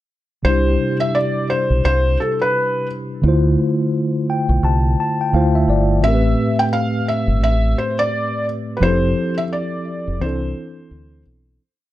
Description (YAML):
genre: lo-fi hip hop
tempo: 86 BPM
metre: 4/4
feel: swing 60% on 16ths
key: C major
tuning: A4 = 441 Hz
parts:
  - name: felt-muted upright piano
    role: melody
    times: 0.4-11.2 s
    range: A4 to G5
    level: -20 LUFS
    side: equal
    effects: none
  - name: mellow tine electric piano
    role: accompaniment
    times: 0.4-11.6 s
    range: A2 to A5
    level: -19 LUFS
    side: left 1 dB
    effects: medium stereo tremolo, cassette tape
  - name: deep dub fingered electric bass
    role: bass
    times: 0.4-11.6 s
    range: F1 to D2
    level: -17 LUFS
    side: equal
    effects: none
room: moderate studio reverb, RT60 0.6 s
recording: dark, warm production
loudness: -16 LUFS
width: side -14 dB against mid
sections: 0.4-11.6 A section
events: tine electric piano fill 3.9-6.0; fade-out 8.8-11.6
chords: 0.4 C; 3.2 Dm7; 6.0 Am7; 8.8 Fmaj7; 10.2 C6